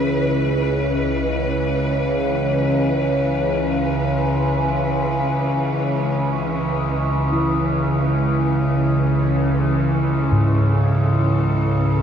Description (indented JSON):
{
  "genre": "dark ambient drone",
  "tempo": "free time",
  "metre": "none",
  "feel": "none",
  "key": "C# minor",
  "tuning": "A4 = 440 Hz",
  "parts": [
    { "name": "clear studio cello section", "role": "sustained chords", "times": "0.0-12.0 s", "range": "E3 to B4", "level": "-25 LUFS", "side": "equal", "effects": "shimmer reverb" },
    { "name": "overtone-sweeping drone", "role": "drone", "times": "0.0-12.0 s", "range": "C#2 to C#3", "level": "-19 LUFS", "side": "equal", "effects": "chorus, built-in reverb, phaser" },
    { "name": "bronze singing bowl", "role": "texture", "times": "0.0-12.0 s", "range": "E3 to E4", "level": "-28 LUFS", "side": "equal", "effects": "shimmer reverb" },
    { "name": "gamelan-type bossed gongs", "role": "arpeggios", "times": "10.3-12.0 s", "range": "G#2", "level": "-18 LUFS", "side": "equal", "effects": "none" }
  ],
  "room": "wet huge ambient reverb, RT60 8.7 s",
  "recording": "dark, warm production",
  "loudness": "-17 LUFS",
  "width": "side -8 dB against mid",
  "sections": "0.0-12.0 A section",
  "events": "none",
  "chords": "0.0 C#m7; 7.3 A"
}